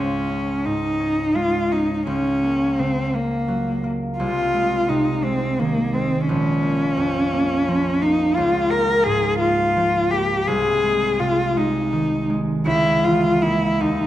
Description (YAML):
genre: classical, romantic duo for cello and harp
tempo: 57 BPM (dotted quarters)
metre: 6/8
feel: uneven beats, rubato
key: Ab major from 8.4 s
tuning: A4 = 440 Hz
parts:
  - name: warm cello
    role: melody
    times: 0.0-14.1 s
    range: Bb3 to Bb4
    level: -19 LUFS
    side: left 1 dB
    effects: none
  - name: concert harp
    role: accompaniment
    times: 0.0-14.1 s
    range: Bb1 to F4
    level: -23 LUFS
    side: right 2 dB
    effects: none
room: wet recital hall reverb, RT60 1.8 s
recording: none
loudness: -18 LUFS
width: side -13 dB against mid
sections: 0.0-14.1 A section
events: none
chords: 0.0 Db; 2.1 Gb/Db; 4.2 Ab/C; 6.3 Bbm; 8.4 Db6; 10.5 Ab/C; 12.7 Bbm7b5/Db